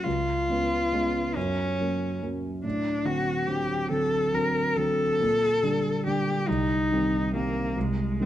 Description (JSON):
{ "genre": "classical, romantic duo for cello and grand piano", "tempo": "47 BPM (dotted quarters)", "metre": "6/8", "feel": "rubato", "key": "unclear", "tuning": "A4 = 439 Hz", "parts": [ { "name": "rich cello", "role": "melody", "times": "0.0-8.3 s", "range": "Ab3 to Bb4", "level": "-26 LUFS", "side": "left 2 dB", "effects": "none" }, { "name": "dark concert grand piano", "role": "accompaniment", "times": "0.0-8.3 s", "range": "C2 to D4", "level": "-28 LUFS", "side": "right 2 dB", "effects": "none" } ], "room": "moderate recital hall reverb, RT60 1.6 s", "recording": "close, detailed microphones", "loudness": "-24 LUFS", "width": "side -12 dB against mid", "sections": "0.0-8.3 A section", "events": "none", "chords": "0.1 Db7; 1.4 Gb; 2.6 D7/A; 5.2 Gm/Bb; 6.5 Cm" }